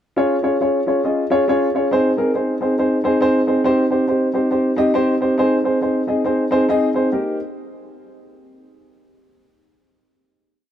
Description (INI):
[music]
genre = soul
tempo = 138 BPM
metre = 4/4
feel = swing 60% on 8ths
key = Eb mixolydian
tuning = A4 = 440 Hz
[part]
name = dark upright piano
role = solo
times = 0.2-7.4 s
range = Bb3 to Eb5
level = -16 LUFS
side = equal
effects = none
[sound]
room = moderate plate reverb, RT60 3.7 s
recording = none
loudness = -16 LUFS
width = side -10 dB against mid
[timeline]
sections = 0.2-7.1 pre-chorus; 7.1-8.9 final chord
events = none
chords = 0.2 Db; 1.9 Ab; 3.7 Cm; 5.4 Ab; 7.1 Eb